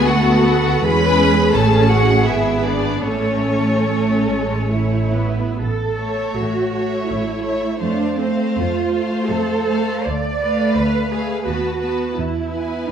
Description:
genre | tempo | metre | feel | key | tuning
classical, slow romantic movement for string orchestra | 63-87 BPM | 3/4 | rubato | A major | A4 = 440 Hz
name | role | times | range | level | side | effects
clear chamber violin section | melody | 0.0-12.9 s | C#5 to B5 | -25 LUFS | left 3 dB | none
rich chamber violin section | second line | 0.0-12.9 s | C#4 to C#5 | -24 LUFS | left 4 dB | none
rich symphonic viola section | accompaniment | 0.0-12.9 s | G#3 to C#4 | -21 LUFS | equal | none
dark chamber double bass section | bass | 0.0-12.9 s | G#1 to F2 | -22 LUFS | right 3 dB | none
warm chamber cello section | bass | 0.0-12.9 s | C4 to D5 | -22 LUFS | right 5 dB | none
room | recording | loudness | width
moderate concert hall reverb, RT60 2.0 s | none | -16 LUFS | side -8 dB against mid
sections
0.0-5.6 A section; 5.6-12.9 A section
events
none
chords
0.0 Bm7/D; 0.8 A/E; 2.3 E7/G#; 3.1 A; 7.8 F; 10.1 Bm7b5/D; 11.5 B7/D#; 12.2 E

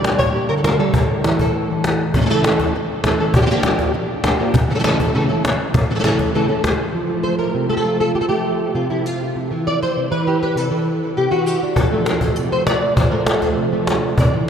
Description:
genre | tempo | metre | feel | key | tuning
flamenco | 200 BPM | 4/4 | straight | unclear | A4 = 436 Hz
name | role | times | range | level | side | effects
flamenco guitar | melody | 0.0-14.5 s | A2 to D5 | -17 LUFS | equal | ensemble chorus, analog delay
cajon | percussion | 0.0-6.8, 11.8-14.3 s | none | -19 LUFS | left 1 dB | none
room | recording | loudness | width
wet cathedral reverb, RT60 5.8 s | dreamy mix soaked in reverb | -16 LUFS | side -8 dB against mid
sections
0.0-2.1 A section; 2.1-6.9 B section; 6.9-14.5 C section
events
none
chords
0.0 Gm; 0.9 A5; 2.1 A; 3.3 Bb6; 4.5 A; 6.9 F; 9.4 C; 11.8 F6

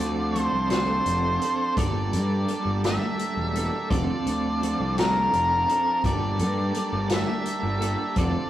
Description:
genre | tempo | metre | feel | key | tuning
psychedelic rock | 56 BPM (dotted quarters) | 6/8 | straight | G dorian | A4 = 440 Hz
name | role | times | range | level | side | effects
octave-fuzz lead guitar | melody | 0.0-8.5 s | Bb4 to E5 | -27 LUFS | left 1 dB | distortion
overdriven combo organ | sustained chords | 0.0-8.5 s | F3 to A5 | -33 LUFS | right 4 dB | none
twelve-string electric guitar | riff | 0.0-8.5 s | F3 to A4 | -30 LUFS | right 1 dB | tremolo
fuzz picked electric bass | bass | 0.0-8.3 s | E1 to G2 | -27 LUFS | equal | overdrive
vintage drum kit | drums | 0.0-8.3 s | hi-hat, kick drum, snare drum | -29 LUFS | left 1 dB | none
room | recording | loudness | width
wet stone room reverb, RT60 1.1 s | rough rehearsal-room recording | -22 LUFS | side -12 dB against mid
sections
0.0-8.5 A section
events
none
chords
0.0 F6; 1.8 Gmadd9; 3.9 F6; 6.0 Gmadd9

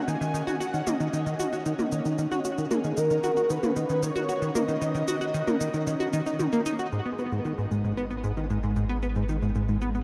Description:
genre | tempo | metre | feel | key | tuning
ambient, sequencer-driven space music | 114 BPM | 4/4 | straight | G# minor from 6.9 s | A4 = 441 Hz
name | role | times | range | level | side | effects
breathy flute-like synth lead | melody | 0.0-6.4 s | G#4 to G#5 | -33 LUFS | equal | ensemble chorus, shimmer reverb, tape echo
plucky analog bass | riff | 0.0-10.0 s | G#2 to F#4 | -30 LUFS | equal | subtle chorus, shimmer reverb, tape echo
pulsing gated texture | texture | 0.0-10.0 s | B3 to C#5 | -40 LUFS | equal | none
electronic shaker and toms | percussion | 0.1-10.0 s | none | -36 LUFS | equal | tape echo
analog drone | bass | 7.9-10.0 s | G#1 | -34 LUFS | equal | chorus
room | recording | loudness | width
wet huge ambient reverb, RT60 6.9 s | dark, warm production | -27 LUFS | mono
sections
0.0-6.9 A section; 6.9-10.0 B section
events
none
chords
0.0 D#m; 6.9 G#m

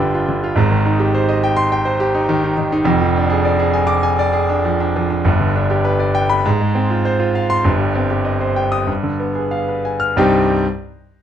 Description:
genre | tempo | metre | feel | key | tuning
classical, virtuoso piano study | 89-106 BPM | 4/4 | rubato | C minor | A4 = 440 Hz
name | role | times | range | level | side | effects
warm grand piano | solo | 0.0-10.7 s | F1 to F6 | -14 LUFS | equal | none
room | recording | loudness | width
light reverb | minimal, uncompressed stereo recording | -14 LUFS | side -9 dB against mid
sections
0.0-10.2 A section; 10.2-11.2 B section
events
slowing down 4.0-10.2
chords
0.0 G7; 0.6 Abmaj7; 2.9 Ddim/F; 5.3 G; 6.5 Fm/Ab; 7.7 Cm/G; 8.9 G7b9; 10.2 Cm

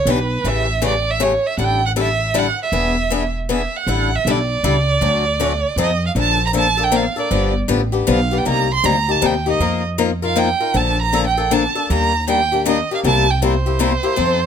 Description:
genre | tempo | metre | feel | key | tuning
acoustic string swing (jazz manouche) | 157 BPM | 3/4 | swing 63% on 8ths | Bb major from 6.2 s | A4 = 437 Hz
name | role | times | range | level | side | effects
warm violin | melody | 0.0-14.5 s | B4 to C6 | -19 LUFS | right 5 dB | none
picked swing-style acoustic guitar | accompaniment | 0.1-14.4 s | C3 to Bb4 | -19 LUFS | left 7 dB | none
upright bass | bass | 0.1-14.5 s | E1 to F2 | -21 LUFS | right 1 dB | none
room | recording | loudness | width
light reverb | none | -15 LUFS | side -8 dB against mid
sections
0.0-6.2 A section; 6.2-14.5 B section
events
none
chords
0.4 A7; 1.6 A7sus4; 2.7 E7; 3.9 A7sus4; 5.0 Dmaj7; 5.8 F7; 6.2 Bbmaj7; 7.3 G7; 8.5 Cm7; 9.6 F7sus4; 10.7 Bbmaj7; 11.9 Ebmaj7; 13.0 C7

